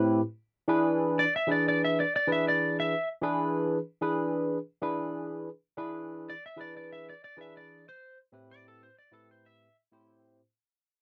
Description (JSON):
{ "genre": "blues", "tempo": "94 BPM", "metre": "4/4", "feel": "straight", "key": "A minor", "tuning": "A4 = 438 Hz", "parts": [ { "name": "barky tine electric piano", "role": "accompaniment", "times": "0.0-10.4 s", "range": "A2 to C5", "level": "-30 LUFS", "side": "equal", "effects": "lush chorus" }, { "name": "clean lap steel guitar", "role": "melody", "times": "1.2-9.8 s", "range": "A4 to E5", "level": "-31 LUFS", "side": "equal", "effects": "none" } ], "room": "light reverb", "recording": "dry, close 1970s-style studio recording", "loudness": "-29 LUFS", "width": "mono", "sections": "0.0-10.4 A section", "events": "fade-out 0.0-10.4", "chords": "0.2 E7; 7.8 Am9", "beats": "| 0.20 0.84 1.48 2.11 | 2.75 3.38 4.02 4.66 | 5.29 5.93 6.57 7.21 | 7.84 8.48 9.12 9.76" }